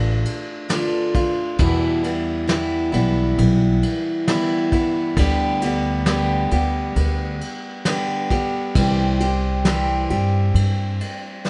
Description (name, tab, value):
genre	acoustic folk duo or small band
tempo	67 BPM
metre	4/4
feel	straight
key	unclear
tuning	A4 = 440 Hz
part	picked steel-string acoustic guitar	accompaniment	0.0-11.5 s	E2 to G4	-24 LUFS	equal	none
part	upright bass	bass	0.0-11.0 s	A1 to G2	-23 LUFS	equal	none
part	soft brush drum kit	drums	0.3-11.5 s	kick drum, ride cymbal, snare drum	-28 LUFS	equal	none
room	little or no reverb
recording	dark, warm production, nothing above 10.9 kHz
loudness	-20 LUFS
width	mono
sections	0.0-11.5 A section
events	none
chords	0.0 Dm; 1.6 Em; 5.2 G/D; 8.8 C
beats	0.70 | 1.59 2.49 3.38 4.28 | 5.17 6.07 6.96 7.86 | 8.75 9.65 10.55 11.45